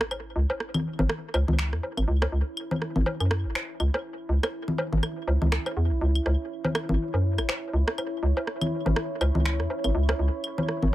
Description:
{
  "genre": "minimal techno",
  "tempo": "122 BPM",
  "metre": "4/4",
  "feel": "swing 58% on 16ths",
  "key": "C# minor",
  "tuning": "A4 = 441 Hz",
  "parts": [
    { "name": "electronic rim click, claves, woodblock and congas", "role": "percussion", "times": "0.0-10.9 s", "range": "none", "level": "-29 LUFS", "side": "left 1 dB", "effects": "overdrive, dub echo" },
    { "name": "deep dark ambient pad", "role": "texture", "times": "0.1-10.9 s", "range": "E4 to B5", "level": "-34 LUFS", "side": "equal", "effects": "chorus, built-in reverb" },
    { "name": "hollow knocking FM bass", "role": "bass", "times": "0.4-10.9 s", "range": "G#1 to F#2", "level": "-24 LUFS", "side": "equal", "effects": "none" },
    { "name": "electronic finger snaps", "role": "drums", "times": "1.6-9.6 s", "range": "none", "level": "-29 LUFS", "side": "equal", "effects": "none" }
  ],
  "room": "light reverb",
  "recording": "none",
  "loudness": "-24 LUFS",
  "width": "side -15 dB against mid",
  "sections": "0.0-10.9 A section",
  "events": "none",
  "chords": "0.0 C#m7"
}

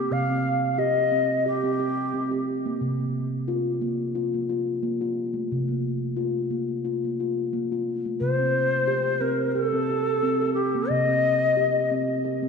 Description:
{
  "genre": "world meditative, meditative tuned percussion",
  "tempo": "89 BPM",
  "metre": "4/4",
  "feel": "swing 55% on 16ths",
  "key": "C dorian",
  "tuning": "A4 = 442 Hz",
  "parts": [
    { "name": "Native American-style cedar flute", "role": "melody", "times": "0.0-2.4, 8.2-11.9 s", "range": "G4 to F5", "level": "-23 LUFS", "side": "left 2 dB", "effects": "ping-pong delay" },
    { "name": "steel tongue drum", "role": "arpeggios", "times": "0.0-12.5 s", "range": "C3 to G4", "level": "-25 LUFS", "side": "equal", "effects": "ping-pong delay" }
  ],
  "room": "wet scoring stage reverb, RT60 1.9 s, studio ambience",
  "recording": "dark, warm production",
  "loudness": "-22 LUFS",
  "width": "side -5 dB against mid",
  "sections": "0.0-12.5 A section",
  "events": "none",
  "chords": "0.0 Cm; 2.8 Bb5/C; 8.2 Cm"
}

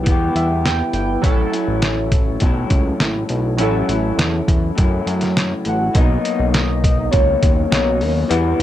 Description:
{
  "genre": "indie pop, bedroom pop",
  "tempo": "102 BPM",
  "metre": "4/4",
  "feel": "straight",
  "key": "B major",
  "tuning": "A4 = 439 Hz",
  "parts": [
    { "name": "chorused retro synth keys", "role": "accompaniment", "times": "0.0-6.0 s", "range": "F#3 to G5", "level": "-24 LUFS", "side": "right 4 dB", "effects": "cassette tape, plate reverb" },
    { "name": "electric guitar through a small old amp", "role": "accompaniment", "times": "0.0-8.6 s", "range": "A2 to G4", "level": "-22 LUFS", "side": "left 4 dB", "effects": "wide subtle chorus, vibrato effect, plate reverb" },
    { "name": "fat analog bass", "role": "bass", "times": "0.0-8.6 s", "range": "G1 to F#2", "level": "-20 LUFS", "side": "equal", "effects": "none" },
    { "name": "trip hop sampler-style drum kit", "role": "drums", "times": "0.1-8.6 s", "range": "hi-hat, kick drum, snare drum", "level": "-18 LUFS", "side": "equal", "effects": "none" },
    { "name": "soft octave-layered synth lead", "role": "melody", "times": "5.7-8.6 s", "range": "B4 to F#5", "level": "-21 LUFS", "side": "left 1 dB", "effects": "phaser, lush chorus, analog delay, plate reverb" }
  ],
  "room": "light reverb",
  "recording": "dark, warm production",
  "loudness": "-15 LUFS",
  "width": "side -12 dB against mid",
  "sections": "0.0-6.0 A section; 6.0-8.6 B section",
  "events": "synth keys fill 0.1-1.2",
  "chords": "0.0 Em; 1.2 A6; 6.0 Bmaj7"
}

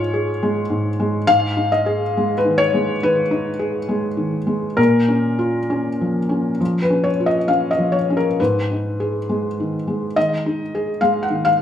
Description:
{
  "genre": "neoclassical minimalist piano",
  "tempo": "68 BPM",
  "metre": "4/4",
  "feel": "rubato",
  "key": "G# dorian",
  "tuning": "A4 = 444 Hz",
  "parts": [
    { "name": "felt-muted upright piano", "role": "solo", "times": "0.0-11.6 s", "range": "G#2 to F#5", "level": "-17 LUFS", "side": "left 1 dB", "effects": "slapback echo" }
  ],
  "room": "light reverb",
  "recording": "small room ambience",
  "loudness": "-17 LUFS",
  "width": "side -10 dB against mid",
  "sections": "0.0-11.6 A section",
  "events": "none",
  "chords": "0.0 C#; 1.3 G#m; 4.8 A#m; 8.4 G#m"
}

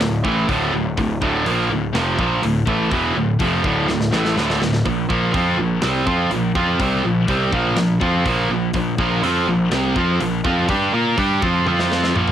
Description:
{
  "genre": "heavy metal",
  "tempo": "124 BPM",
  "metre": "4/4",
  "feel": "straight",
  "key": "unclear",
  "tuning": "A4 = 440 Hz",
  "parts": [
    { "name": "scooped high-gain guitar", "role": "riff", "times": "0.0-12.3 s", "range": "D2 to Bb4", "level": "-22 LUFS", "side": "left 8 dB", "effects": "distortion, cassette tape" },
    { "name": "tight distorted guitar", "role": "riff", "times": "0.0-12.3 s", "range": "D2 to Bb4", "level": "-20 LUFS", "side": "right 6 dB", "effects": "distortion, cassette tape" },
    { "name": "fuzz picked electric bass", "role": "bass", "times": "0.0-12.3 s", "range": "D1 to Bb2", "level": "-23 LUFS", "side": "equal", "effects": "overdrive, transformer saturation" },
    { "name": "tight metal drum kit", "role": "drums", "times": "0.0-12.3 s", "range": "hi-hat, kick drum, snare drum, toms", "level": "-27 LUFS", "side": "left 1 dB", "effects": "cassette tape" }
  ],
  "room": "little or no reverb",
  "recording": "home recording on cassette",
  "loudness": "-16 LUFS",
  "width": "side -10 dB against mid",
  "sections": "0.0-12.3 A section",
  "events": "drum fill 3.9-4.9, 11.7-12.3",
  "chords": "0.0 Dm; 4.9 Bb5; 11.7 F5"
}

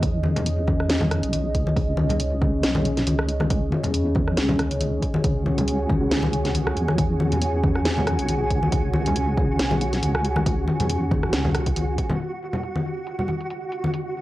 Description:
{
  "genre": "deep dubstep",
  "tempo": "138 BPM",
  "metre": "4/4",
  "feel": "swing 55% on 16ths, half-time",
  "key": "C# minor",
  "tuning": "A4 = 440 Hz",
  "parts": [
    { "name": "dark analog pad", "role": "sustained chords", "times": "0.0-14.2 s", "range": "C#4 to G#5", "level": "-27 LUFS", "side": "equal", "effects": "chorus, cassette tape" },
    { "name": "deep soft wobble bass", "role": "bass", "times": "0.0-12.0 s", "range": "B1 to E2", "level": "-25 LUFS", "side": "equal", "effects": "chorus" },
    { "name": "electronic kick drum", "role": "drums", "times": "0.0-12.1 s", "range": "none", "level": "-24 LUFS", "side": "equal", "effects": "none" },
    { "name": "garage drum kit", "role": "drums", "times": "0.0-14.0 s", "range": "hi-hat, rim click, snare drum", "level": "-27 LUFS", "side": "equal", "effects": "low-pass filter on hats, low-pass filter on cymbals, low-pass filter on snare" },
    { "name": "congas", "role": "percussion", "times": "0.2-13.9 s", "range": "none", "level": "-26 LUFS", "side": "left 1 dB", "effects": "none" },
    { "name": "flickering grainy texture", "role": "texture", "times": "5.5-14.2 s", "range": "F#4", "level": "-31 LUFS", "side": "right 2 dB", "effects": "built-in reverb, cassette tape" }
  ],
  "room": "light reverb",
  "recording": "home recording on cassette",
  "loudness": "-20 LUFS",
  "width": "side -16 dB against mid",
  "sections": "0.0-12.2 A section; 12.2-14.2 B section",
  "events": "filter sweep on drum 12.2-14.2",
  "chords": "0.0 C#5"
}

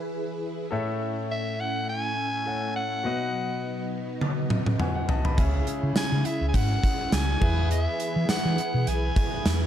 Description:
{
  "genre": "1980s-style pop",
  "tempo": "103 BPM",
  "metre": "4/4",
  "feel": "swing 55% on 16ths",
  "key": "E major",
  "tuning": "A4 = 442 Hz",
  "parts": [
    { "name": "clear concert grand piano", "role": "accompaniment", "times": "0.0-9.7 s", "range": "A2 to B5", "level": "-33 LUFS", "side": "left 3 dB", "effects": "none" },
    { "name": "ensemble organ-string", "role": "sustained chords", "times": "0.0-9.7 s", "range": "C#3 to B4", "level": "-33 LUFS", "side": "equal", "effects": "ensemble chorus" },
    { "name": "raspy soprano saxophone", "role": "melody", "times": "1.3-9.7 s", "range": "E5 to G#5", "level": "-30 LUFS", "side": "equal", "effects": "none" },
    { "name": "gated 80s drum kit", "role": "drums", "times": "4.2-9.6 s", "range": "crash cymbal, hi-hat, kick drum, snare drum, tambourine, toms", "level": "-25 LUFS", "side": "equal", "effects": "none" },
    { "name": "raw garage guitar", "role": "accompaniment", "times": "5.4-9.7 s", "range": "C#3 to E4", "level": "-39 LUFS", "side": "right 4 dB", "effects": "overdrive, wide subtle chorus" },
    { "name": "hollow-body short-scale fingered electric bass", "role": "bass", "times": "5.4-9.7 s", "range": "B1 to E3", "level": "-25 LUFS", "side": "equal", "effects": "none" }
  ],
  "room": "light reverb, studio reverb",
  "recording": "dark, warm production",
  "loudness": "-24 LUFS",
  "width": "side -10 dB against mid",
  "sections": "0.0-9.7 A section",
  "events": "drum fill 4.2-5.4; grand piano fill 4.5-5.4",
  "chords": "0.0 E; 0.7 A; 3.0 B; 5.4 C#m; 7.4 E"
}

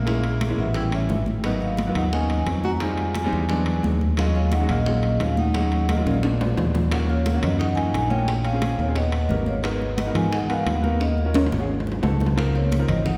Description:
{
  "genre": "Afro-Cuban jazz",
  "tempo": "175 BPM",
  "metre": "4/4",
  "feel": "straight",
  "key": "Eb minor",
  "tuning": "A4 = 440 Hz",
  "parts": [
    { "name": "vibraphone with soft mallets", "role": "melody", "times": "0.0-13.2 s", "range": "Cb5 to Bb5", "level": "-32 LUFS", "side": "equal", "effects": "none" },
    { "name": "breathy tenor saxophone", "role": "second line", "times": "0.0-13.2 s", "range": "Ab3 to Gb4", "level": "-33 LUFS", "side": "equal", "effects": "none" },
    { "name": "fingered electric bass", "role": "bass", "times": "0.0-13.2 s", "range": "Ab1 to Ab2", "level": "-26 LUFS", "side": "equal", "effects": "none" },
    { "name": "warm baby grand piano", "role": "accompaniment", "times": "0.1-13.1 s", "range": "Cb3 to Bb4", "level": "-30 LUFS", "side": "equal", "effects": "none" },
    { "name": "bongos", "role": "percussion", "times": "0.1-13.2 s", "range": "none", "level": "-38 LUFS", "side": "equal", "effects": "none" },
    { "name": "congas", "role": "percussion", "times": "0.1-13.2 s", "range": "none", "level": "-32 LUFS", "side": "equal", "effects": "none" },
    { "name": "timbales", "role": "percussion", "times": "0.1-13.1 s", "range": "none", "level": "-33 LUFS", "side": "equal", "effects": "none" }
  ],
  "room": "wet concert hall reverb, RT60 2.4 s",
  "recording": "heard from further back in the room",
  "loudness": "-22 LUFS",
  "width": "mono",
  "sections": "0.0-6.9 A section; 6.9-13.2 B section",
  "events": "drum fill 5.9-6.9, 11.0-12.4",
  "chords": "0.1 Bbm7b5; 0.8 A9; 1.4 Abm9; 2.8 Fm7; 3.5 E9; 4.2 Ebm11; 6.2 Bb7b9; 6.9 Ebm7; 8.3 Bbm7; 9.0 Eb7b13; 9.6 Abm7; 11.0 Ebm7; 11.7 Ab7b9; 12.4 Dbmaj13"
}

